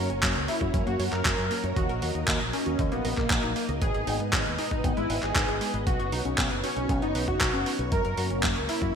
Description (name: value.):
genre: italo disco.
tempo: 117 BPM.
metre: 4/4.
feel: straight.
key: B major.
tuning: A4 = 440 Hz.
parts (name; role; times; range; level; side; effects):
wide unison lead; melody; 0.0-8.9 s; A#3 to A#4; -31 LUFS; equal; lush chorus, digital delay.
string machine, full ensemble; sustained chords; 0.0-8.9 s; F#3 to D#5; -33 LUFS; equal; ensemble chorus.
analog pluck; arpeggios; 0.0-8.9 s; G#3 to D#5; -35 LUFS; left 2 dB; chorus, digital delay.
fingered electric bass with an envelope filter; bass; 0.0-8.9 s; F#1 to G#2; -32 LUFS; equal; none.
dusty soul sampler-style drum kit; drums; 0.1-8.9 s; handclaps, hi-hat; -30 LUFS; right 1 dB; overdrive, gated reverb.
electronic kick drum; drums; 0.2-8.9 s; none; -30 LUFS; equal; overdrive.
room: moderate lush hall reverb, RT60 1.7 s.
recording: bright 1980s-style digital production.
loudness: -24 LUFS.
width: side -7 dB against mid.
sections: 0.0-8.9 A section.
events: none.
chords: 0.0 F#; 1.8 D#m; 3.8 G#m; 5.9 Badd9; 7.9 F#.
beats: 0.23 0.74 1.25 | 1.76 2.28 2.79 3.30 | 3.82 4.33 4.84 5.36 | 5.87 6.38 6.89 7.41 | 7.92 8.43 8.95.